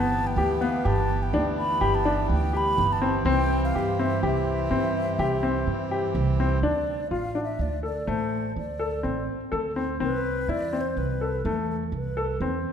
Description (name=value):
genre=contemporary instrumental, chamber music in an uneven meter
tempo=124 BPM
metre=7/4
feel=straight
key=D dorian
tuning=A4 = 440 Hz
part: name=mellow hollow concert flute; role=melody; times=0.0-12.6 s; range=A4 to B5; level=-30 LUFS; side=left 1 dB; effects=none
part: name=hand-pumped harmonium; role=sustained chords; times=0.0-6.6 s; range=E3 to G4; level=-32 LUFS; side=right 2 dB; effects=none
part: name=clear grand piano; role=arpeggios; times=0.0-12.7 s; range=A3 to A4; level=-27 LUFS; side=left 2 dB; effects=none
part: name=upright bass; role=bass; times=0.0-12.6 s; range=G1 to G2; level=-28 LUFS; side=right 2 dB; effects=none
room=moderate concert hall reverb, RT60 1.9 s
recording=none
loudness=-23 LUFS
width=side -8 dB against mid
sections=0.0-6.6 A section; 6.6-12.7 B section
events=none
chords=0.0 G6; 3.3 C; 6.6 D7(no3); 10.0 Amadd9/C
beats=0.37 0.85 1.33 1.82 2.30 2.78 | 3.26 3.75 4.23 4.71 5.19 5.67 6.15 | 6.63 7.12 7.60 8.08 8.56 9.05 9.53 | 10.01 10.49 10.98 11.46 11.94 12.42